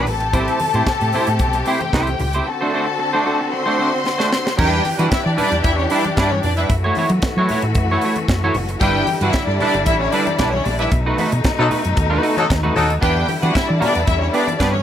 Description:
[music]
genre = disco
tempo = 114 BPM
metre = 4/4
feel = straight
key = E dorian from 4.6 s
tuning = A4 = 438 Hz
[part]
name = clear studio string section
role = second line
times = 0.0-14.8 s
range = C#4 to C6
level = -21 LUFS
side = left 2 dB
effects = none
[part]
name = semi-hollow electric guitar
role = accompaniment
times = 0.0-14.8 s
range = G3 to C#5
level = -21 LUFS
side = right 2 dB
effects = analog chorus
[part]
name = clear studio string section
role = sustained chords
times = 0.0-14.8 s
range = B2 to G4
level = -24 LUFS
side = left 2 dB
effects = none
[part]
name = hollow-body short-scale fingered electric bass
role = bass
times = 0.0-14.8 s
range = F#1 to F#3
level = -21 LUFS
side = equal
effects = none
[part]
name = tight funk drum kit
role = drums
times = 0.1-14.7 s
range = crash cymbal, hi-hat, kick drum, snare drum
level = -22 LUFS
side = equal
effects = none
[part]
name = congas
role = percussion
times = 0.1-14.8 s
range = none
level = -30 LUFS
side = left 3 dB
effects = none
[part]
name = warm horn section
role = stabs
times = 11.6-12.9 s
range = F#3 to A4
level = -20 LUFS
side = left 2 dB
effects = none
[sound]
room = light reverb, studio reverb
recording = none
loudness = -15 LUFS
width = side -10 dB against mid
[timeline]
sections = 0.0-4.6 A section; 4.6-14.8 B section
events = drum fill 4.1-4.6; band accent 10.9-13.0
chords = 0.1 Am7; 2.5 D7; 4.6 Em7; 6.7 F#m7; 8.8 Em7/G; 10.9 B7; 13.0 Em7

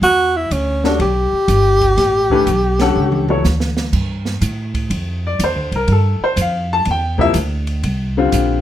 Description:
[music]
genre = modal jazz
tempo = 123 BPM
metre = 4/4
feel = swing 67% on 8ths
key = unclear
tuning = A4 = 440 Hz
[part]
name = breathy tenor saxophone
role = melody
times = 0.0-3.4 s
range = C#4 to G4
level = -15 LUFS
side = equal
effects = none
[part]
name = upright bass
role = bass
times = 0.0-8.6 s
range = G1 to A2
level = -18 LUFS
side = right 1 dB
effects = none
[part]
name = open jazz drum kit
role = drums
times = 0.0-8.5 s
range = crash cymbal, hi-hat, kick drum, ride cymbal, snare drum, toms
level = -25 LUFS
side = right 2 dB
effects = none
[part]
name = bright upright piano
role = accompaniment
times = 0.8-8.6 s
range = C3 to A5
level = -17 LUFS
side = left 4 dB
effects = none
[sound]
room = light reverb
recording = none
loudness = -14 LUFS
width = side -12 dB against mid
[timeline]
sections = 0.0-3.9 A section; 3.9-8.6 B section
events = drum fill 3.0-3.9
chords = 0.0 A13sus4; 3.9 G13sus4

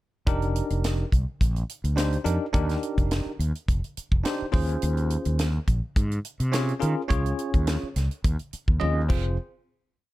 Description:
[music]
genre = electric jazz fusion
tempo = 105 BPM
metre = 4/4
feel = straight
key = F minor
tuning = A4 = 437 Hz
[part]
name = barky tine electric piano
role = accompaniment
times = 0.3-9.4 s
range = C4 to Eb5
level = -29 LUFS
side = equal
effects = fast stereo tremolo
[part]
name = fretless electric bass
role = bass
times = 0.3-9.4 s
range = F1 to Eb3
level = -25 LUFS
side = equal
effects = none
[part]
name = tight funk drum kit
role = drums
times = 0.3-9.2 s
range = crash cymbal, hi-hat, kick drum, snare drum, toms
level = -26 LUFS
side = equal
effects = none
[sound]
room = light reverb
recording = none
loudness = -23 LUFS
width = side -17 dB against mid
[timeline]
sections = 0.3-9.4 groove; 9.4-10.1 final hit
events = drum fill 8.8-9.4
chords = 0.3 F13sus4; 4.5 Eb13sus4; 9.1 Fm; 9.4 N.C.

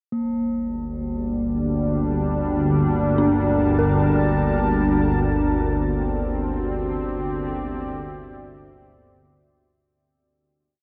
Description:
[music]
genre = dark ambient drone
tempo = 50 BPM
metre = 4/4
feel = straight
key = G dorian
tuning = A4 = 440 Hz
[part]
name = deep dark ambient pad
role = sustained chords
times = 1.0-9.9 s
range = G3 to A5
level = -28 LUFS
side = equal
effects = chorus, built-in reverb, shimmer reverb
[part]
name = organ-like drone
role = drone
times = 0.7-10.0 s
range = G1 to D2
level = -25 LUFS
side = equal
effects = ensemble chorus, built-in reverb
[part]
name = quartz singing bowl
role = texture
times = 0.1-9.9 s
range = Bb3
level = -31 LUFS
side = equal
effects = none
[part]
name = dark detuned synth bell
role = arpeggios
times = 3.2-10.8 s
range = D4 to Bb4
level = -30 LUFS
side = equal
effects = none
[sound]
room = wet cathedral reverb, RT60 6.4 s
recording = worn, warbling old tape, cassette tape, warbly pitch drift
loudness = -22 LUFS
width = mono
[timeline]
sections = 0.1-9.8 A section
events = fade-out 5.0-9.8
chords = 0.1 Gm; 5.0 C

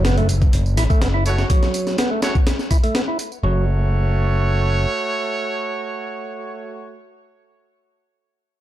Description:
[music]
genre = breakbeat, breaks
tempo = 124 BPM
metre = 4/4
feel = straight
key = F# minor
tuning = A4 = 440 Hz
[part]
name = percussive tonewheel organ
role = riff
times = 0.0-3.7 s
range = F#3 to E4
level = -24 LUFS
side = right 1 dB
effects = overdrive, stopped rotary speaker, low-pass filter, ping-pong delay
[part]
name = modern bright picked electric bass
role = bass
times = 0.0-4.8 s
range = F#1 to A1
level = -18 LUFS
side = equal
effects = none
[part]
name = breakbeat sampler-style drum kit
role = drums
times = 0.0-3.3 s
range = hi-hat, kick drum, snare drum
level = -18 LUFS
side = equal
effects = none
[part]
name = tambourine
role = drums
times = 0.0-3.4 s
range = none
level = -34 LUFS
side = right 2 dB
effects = overdrive
[part]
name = impact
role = sound effects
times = 0.0-1.5 s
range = none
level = -30 LUFS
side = equal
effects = none
[part]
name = warm horn section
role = stabs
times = 1.3-7.0 s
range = A3 to C#5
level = -24 LUFS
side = right 3 dB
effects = ping-pong delay
[sound]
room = digital ambience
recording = dark, warm production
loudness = -17 LUFS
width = side -13 dB against mid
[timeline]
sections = 0.0-3.4 A section; 3.4-7.3 B section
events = impact 0.0-1.5; filter sweep on tonewheel organ 0.0-3.4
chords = 0.0 F#m

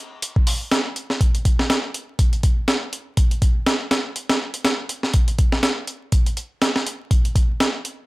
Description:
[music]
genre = breakbeat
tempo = 122 BPM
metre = 4/4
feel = swing 56% on 16ths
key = none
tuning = none
[part]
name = breakbeat sampler-style drum kit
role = drums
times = 0.2-8.0 s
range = hi-hat, kick drum, snare drum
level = -18 LUFS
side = equal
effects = none
[sound]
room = little or no reverb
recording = vinyl crackle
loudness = -18 LUFS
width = side -21 dB against mid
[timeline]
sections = 0.0-8.1 A section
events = none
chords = none

